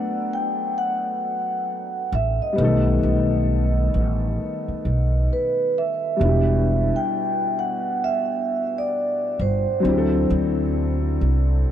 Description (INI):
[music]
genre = hip hop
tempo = 66 BPM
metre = 4/4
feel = swing 61% on 16ths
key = unclear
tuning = A4 = 441 Hz
[part]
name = vibraphone with soft mallets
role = melody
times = 0.0-10.3 s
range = B4 to G5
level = -24 LUFS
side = right 2 dB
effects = low-pass filter, diffuse ambient delay
[part]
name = warm upright piano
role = accompaniment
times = 0.0-11.7 s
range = B2 to A4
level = -25 LUFS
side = left 3 dB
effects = cassette tape, low-pass filter
[part]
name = upright bass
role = bass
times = 2.1-11.6 s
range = E1 to D2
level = -21 LUFS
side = right 1 dB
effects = none
[sound]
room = light reverb, studio ambience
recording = none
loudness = -19 LUFS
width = side -10 dB against mid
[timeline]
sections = 0.0-6.2 A section; 6.2-11.7 A section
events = none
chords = 0.0 Gmaj9 (rootless); 2.6 Baug7; 6.2 Em7; 9.8 D7